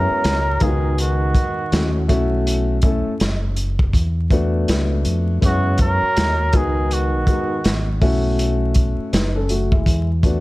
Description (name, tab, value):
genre	hip hop, jazz-hop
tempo	81 BPM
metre	4/4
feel	swing 60% on 16ths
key	unclear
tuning	A4 = 440 Hz
part	trumpet with cup mute	melody	0.0-8.0 s	F#4 to A#4	-22 LUFS	right 1 dB	none
part	breathy tenor saxophone	second line	0.0-8.0 s	C#3 to F#3	-28 LUFS	right 3 dB	none
part	dark upright piano	accompaniment	0.0-10.4 s	G#3 to B4	-23 LUFS	left 2 dB	none
part	deep dub fingered electric bass	bass	0.0-10.4 s	F#1 to F#2	-20 LUFS	equal	none
part	crunchy breakbeat drum kit	drums	0.2-10.4 s	hi-hat, kick drum, snare drum	-20 LUFS	equal	none
room	little or no reverb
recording	vinyl crackle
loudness	-16 LUFS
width	side -19 dB against mid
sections	0.0-10.4 A section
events	none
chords	0.0 F#9sus4; 0.6 C#9sus4; 2.1 B9sus4; 3.9 E9sus4; 5.4 F#9sus4; 6.5 C#9sus4; 8.0 B9sus4; 9.9 E9sus4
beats	0.24 0.98 1.72 | 2.46 3.20 3.94 4.68 | 5.42 6.17 6.91 7.65 | 8.39 9.13 9.87